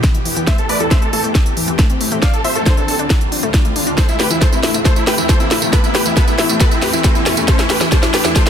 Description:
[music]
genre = uplifting trance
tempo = 137 BPM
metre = 4/4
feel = straight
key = A minor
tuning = A4 = 439 Hz
[part]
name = shimmering ambient pad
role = sustained chords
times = 0.0-8.5 s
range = D2 to G4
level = -24 LUFS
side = equal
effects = chorus, built-in reverb, sidechain pumping
[part]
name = wide unison pluck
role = arpeggios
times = 0.0-8.4 s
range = B2 to A4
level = -22 LUFS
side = left 3 dB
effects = sidechain pumping, digital delay
[part]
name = electronic kick drum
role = drums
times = 0.0-8.4 s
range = none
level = -14 LUFS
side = equal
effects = none
[part]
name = house drum kit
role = drums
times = 0.0-8.5 s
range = hi-hat, snare drum, tambourine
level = -18 LUFS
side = equal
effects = none
[part]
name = riser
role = sound effects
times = 0.4-8.5 s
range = none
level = -26 LUFS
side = equal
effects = none
[part]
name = big supersaw lead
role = melody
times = 0.5-8.5 s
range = E4 to F5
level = -20 LUFS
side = equal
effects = sidechain pumping, low-pass filter, digital delay
[part]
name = bright concert grand piano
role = second line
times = 0.5-8.5 s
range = E4 to F5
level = -27 LUFS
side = left 2 dB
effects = none
[sound]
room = light reverb, digital ambience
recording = dense, heavily limited modern master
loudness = -12 LUFS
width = side -8 dB against mid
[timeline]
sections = 0.0-8.5 A section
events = build-up 0.0-8.5; drum fill 0.0-8.5; filter sweep on synth pluck 0.0-8.5; riser 0.4-8.5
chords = 0.5 Am7; 2.2 Dm7; 4.0 Am7; 5.7 Em; 7.5 Am7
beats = 0.04 | 0.47 0.91 1.35 1.79 | 2.23 2.66 3.10 3.54 | 3.98 4.42 4.85 5.29 | 5.73 6.17 6.61 7.04 | 7.48 7.92 8.36

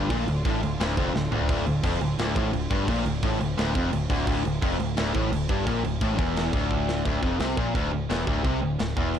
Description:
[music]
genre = heavy metal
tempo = 172 BPM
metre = 4/4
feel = straight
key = D minor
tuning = A4 = 436 Hz
[part]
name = clear studio string section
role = sustained chords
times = 0.0-7.0 s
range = D3 to F4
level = -37 LUFS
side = right 1 dB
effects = none
[part]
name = distorted electric guitar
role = riff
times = 0.0-9.1 s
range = D2 to C3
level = -28 LUFS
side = left 10 dB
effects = overdrive
[part]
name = tight distorted guitar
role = riff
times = 0.0-9.1 s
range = D2 to C3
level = -30 LUFS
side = right 10 dB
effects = distortion
[part]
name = growling picked electric bass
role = bass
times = 0.0-9.1 s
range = D1 to C2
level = -30 LUFS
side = equal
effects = overdrive
[part]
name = tight metal drum kit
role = drums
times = 0.1-9.2 s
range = crash cymbal, kick drum, snare drum, toms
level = -29 LUFS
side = right 1 dB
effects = none
[sound]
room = light reverb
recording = dark, warm production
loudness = -23 LUFS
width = side -9 dB against mid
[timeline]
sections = 0.0-7.1 A section; 7.1-9.2 B section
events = half time 0.0-7.1; drum fill 1.1-1.5, 6.7-7.1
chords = 0.0 Dm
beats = | 0.10 0.45 0.80 1.15 | 1.49 1.84 2.19 2.54 | 2.88 3.23 3.58 3.93 | 4.28 4.62 4.97 5.32 | 5.67 6.01 6.36 6.71 | 7.06 7.41 7.75 8.10 | 8.45 8.80 9.15

